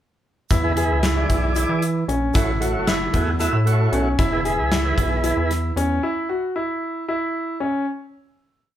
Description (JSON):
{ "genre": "progressive instrumental, band music in an uneven meter", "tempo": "228 BPM (eighths)", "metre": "7/8", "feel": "straight", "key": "unclear", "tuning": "A4 = 440 Hz", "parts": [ { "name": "warm concert grand piano", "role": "arpeggios", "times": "0.5-7.8 s", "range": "C#4 to G#4", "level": "-23 LUFS", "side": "equal", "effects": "none" }, { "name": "rubbery square bass", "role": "bass", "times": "0.5-6.0 s", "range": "E1 to E3", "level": "-22 LUFS", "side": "equal", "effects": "none" }, { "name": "gated 80s drum kit", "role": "drums", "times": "0.5-5.9 s", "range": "hi-hat, kick drum, snare drum", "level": "-23 LUFS", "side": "left 1 dB", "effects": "none" }, { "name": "egg shaker", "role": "percussion", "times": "0.5-3.8 s", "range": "none", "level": "-40 LUFS", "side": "right 6 dB", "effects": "none" }, { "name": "tonewheel organ", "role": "accompaniment", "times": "0.6-5.5 s", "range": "E3 to E5", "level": "-24 LUFS", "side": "right 2 dB", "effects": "slow rotary speaker" } ], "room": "moderate large studio reverb, RT60 0.8 s", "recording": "band playing live in one room", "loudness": "-19 LUFS", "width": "side -11 dB against mid", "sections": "0.5-7.9 groove", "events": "none", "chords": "0.5 E; 2.4 A6; 4.2 E; 6.0 C#madd11" }